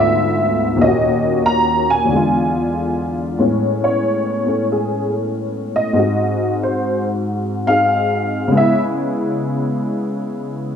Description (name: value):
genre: solo jazz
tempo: 93 BPM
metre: 4/4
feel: swing 68% on 8ths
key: A major from 3.4 s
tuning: A4 = 440 Hz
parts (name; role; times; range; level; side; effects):
- honky-tonk upright piano; solo; 0.0-10.8 s; D2 to Bb5; -15 LUFS; left 1 dB; none
room: moderate large studio reverb, RT60 1.4 s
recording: none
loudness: -15 LUFS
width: side -7 dB against mid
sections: 0.0-3.4 A section; 3.4-10.8 B section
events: honky-tonk piano solo 3.4-10.8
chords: 0.0 Ddim7; 0.8 Ebm7; 2.1 E7b9; 3.4 Amaj9; 5.9 G#7; 8.5 C#m7